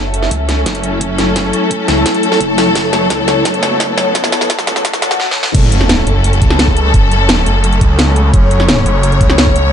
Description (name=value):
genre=dark technical drum and bass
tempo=172 BPM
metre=4/4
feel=straight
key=F# minor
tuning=A4 = 440 Hz
part: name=warm symphonic string section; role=sustained chords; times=0.0-9.7 s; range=F#3 to C#5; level=-16 LUFS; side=left 2 dB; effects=sidechain pumping, low-pass filter
part: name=phased detuned saw bass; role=bass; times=0.0-9.7 s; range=F#1 to C#2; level=-14 LUFS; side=equal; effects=phaser, tube saturation, sidechain pumping
part: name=ethereal airy pad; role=texture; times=0.0-5.2 s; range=E4 to C#5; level=-18 LUFS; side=left 1 dB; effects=ensemble chorus, built-in reverb, sidechain pumping
part: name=drum and bass drum kit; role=drums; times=0.1-9.6 s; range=crash cymbal, hi-hat, snare drum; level=-16 LUFS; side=equal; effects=high-pass filter on hats, high-pass filter on snare, high-pass filter on cymbals, high-pass filter on room
part: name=electronic kick drum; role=drums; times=0.3-9.5 s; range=none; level=-14 LUFS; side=equal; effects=high-pass filter on kick, high-pass filter on room
part: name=swell and sub drop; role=sound effects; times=5.0-6.9 s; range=none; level=-20 LUFS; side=equal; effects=none
room=light reverb, digital ambience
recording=high-pass filter, nothing above 10.9 kHz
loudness=-10 LUFS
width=side -8 dB against mid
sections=0.0-5.5 A section; 5.5-9.7 B section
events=build-up 0.0-5.5; drum fill 0.0-5.2, 5.2-5.5; filter sweep on string section 0.0-5.5; filter sweep 0.0-5.5; swell 5.0-5.5; drop 5.5-9.7; impact 5.5-6.9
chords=0.0 F#m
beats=0.31 0.66 1.01 | 1.36 1.71 2.06 2.41 | 2.75 3.10 3.45 3.80 | 4.15 4.50 4.85 5.20 | 5.55 5.89 6.24 6.59 | 6.94 7.29 7.64 7.99 | 8.34 8.69 9.03 9.38